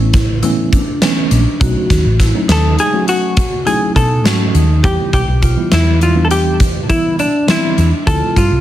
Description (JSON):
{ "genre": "progressive instrumental, band music in an uneven meter", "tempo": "204 BPM (eighths)", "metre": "11/8", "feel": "straight", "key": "unclear", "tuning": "A4 = 438 Hz", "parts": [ { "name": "tine electric piano", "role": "accompaniment", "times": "0.0-8.5 s", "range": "E3 to F#4", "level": "-19 LUFS", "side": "right 1 dB", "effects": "overdrive, fast stereo tremolo" }, { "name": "vibraphone with medium hard mallets", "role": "arpeggios", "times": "0.0-8.6 s", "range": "C4 to G4", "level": "-21 LUFS", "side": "right 2 dB", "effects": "digital delay" }, { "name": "hollow-body short-scale fingered electric bass", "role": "bass", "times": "0.0-8.6 s", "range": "A1 to E3", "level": "-14 LUFS", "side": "equal", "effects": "none" }, { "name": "big rock drum kit", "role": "drums", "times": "0.1-8.5 s", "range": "hi-hat, kick drum, snare drum", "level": "-16 LUFS", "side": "equal", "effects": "none" }, { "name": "hollow-body jazz guitar", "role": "melody", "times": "2.5-8.6 s", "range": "D4 to A4", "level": "-17 LUFS", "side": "left 1 dB", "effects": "digital delay" } ], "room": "light reverb", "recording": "dense, heavily limited modern master", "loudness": "-11 LUFS", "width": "side -13 dB against mid", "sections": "0.0-8.6 A section", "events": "none", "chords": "0.0 Aadd9; 1.6 B7; 4.8 Em; 8.1 Dm7", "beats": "0.14 0.43 0.73 1.02 1.31 | 1.61 1.90 2.20 2.49 2.78 3.08 3.37 3.67 3.96 4.25 4.55 | 4.84 5.13 5.43 5.72 6.01 6.31 6.60 6.89 7.19 7.48 7.78 | 8.07 8.36" }